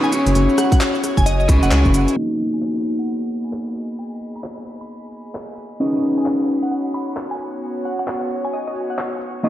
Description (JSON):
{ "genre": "UK garage, two-step garage", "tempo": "132 BPM", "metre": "4/4", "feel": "swing 62% on 16ths", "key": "G# minor", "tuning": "A4 = 440 Hz", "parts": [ { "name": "glassy wavetable pluck", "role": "melody", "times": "0.0-9.5 s", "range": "D#5 to B5", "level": "-28 LUFS", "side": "right 1 dB", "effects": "chorus, diffuse ambient delay" }, { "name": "electric guitar at the edge of break-up", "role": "stabs", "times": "0.0-9.5 s", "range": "A#3 to C#5", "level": "-21 LUFS", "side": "left 1 dB", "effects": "diffuse ambient delay" }, { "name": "garage drum kit", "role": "drums", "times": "0.0-9.3 s", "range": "cabasa, handclaps, hi-hat, rim click", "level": "-28 LUFS", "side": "equal", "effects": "none" }, { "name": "rich symphonic string section", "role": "texture", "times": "0.0-9.5 s", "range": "B3 to B5", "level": "-29 LUFS", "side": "right 1 dB", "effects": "sidechain pumping" }, { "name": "rubbery square bass", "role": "bass", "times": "0.3-2.1 s", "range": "F#1 to C#2", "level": "-16 LUFS", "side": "equal", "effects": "none" }, { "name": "electronic kick drum", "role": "drums", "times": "0.7-1.9 s", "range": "none", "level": "-16 LUFS", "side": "equal", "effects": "none" } ], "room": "moderate lush hall reverb, RT60 2.3 s", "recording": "dreamy mix soaked in reverb, vinyl crackle, low-pass filter", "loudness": "-17 LUFS", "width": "side -13 dB against mid", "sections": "0.0-2.2 A section; 2.2-9.5 B section", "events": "none", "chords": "0.4 F#9sus4; 2.2 G#m7; 5.8 B6" }